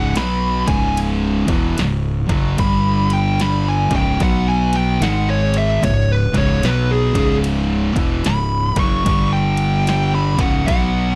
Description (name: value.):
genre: stoner and doom metal.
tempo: 74 BPM.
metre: 4/4.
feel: swing 64% on 8ths.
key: unclear.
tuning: A4 = 440 Hz.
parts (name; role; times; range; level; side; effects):
fuzz lead guitar; melody; 0.0-11.2 s; G#4 to C#6; -24 LUFS; equal; distortion, slapback echo.
thick fuzz guitar; riff; 0.0-11.2 s; C#2 to B3; -24 LUFS; equal; distortion.
thick fuzz guitar; riff; 0.0-11.2 s; C#2 to B3; -25 LUFS; equal; distortion.
tight distorted guitar; riff; 0.0-11.2 s; C#2 to B3; -29 LUFS; equal; distortion.
fuzz fingered electric bass; bass; 0.0-11.2 s; C#1 to B1; -24 LUFS; equal; overdrive, tube saturation.
punchy analog drum machine; drums; 0.2-10.9 s; kick drum, ride cymbal, snare drum; -24 LUFS; equal; none.
room: light reverb, digital ambience.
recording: dark, warm production.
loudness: -17 LUFS.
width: mono.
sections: 0.0-11.2 A section.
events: lead electric guitar solo 0.0-11.2.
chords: 0.0 C#m; 2.6 G5; 3.8 C#5; 4.2 B5; 5.0 G#5; 5.8 C#m; 9.1 G5; 10.3 C#5.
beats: 0.16 0.97 1.78 | 2.59 3.40 4.20 5.01 | 5.82 6.63 7.44 8.25 | 9.06 9.88 10.69.